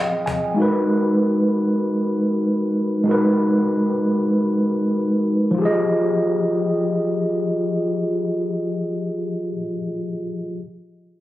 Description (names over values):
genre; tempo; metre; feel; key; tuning
hip hop; free time; none; none; F minor; A4 = 441 Hz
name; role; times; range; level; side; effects
mellow tine electric piano; accompaniment; 0.0-10.6 s; F3 to Ab5; -18 LUFS; equal; medium stereo tremolo, cassette tape
room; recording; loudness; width
light reverb, small room reverb; recorded on a phone in the room, studio reverb; -18 LUFS; side -15 dB against mid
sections
0.0-5.6 A section; 5.6-8.1 B section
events
none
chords
0.0 Fm7; 0.6 Abm7; 5.6 Fm7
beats
free time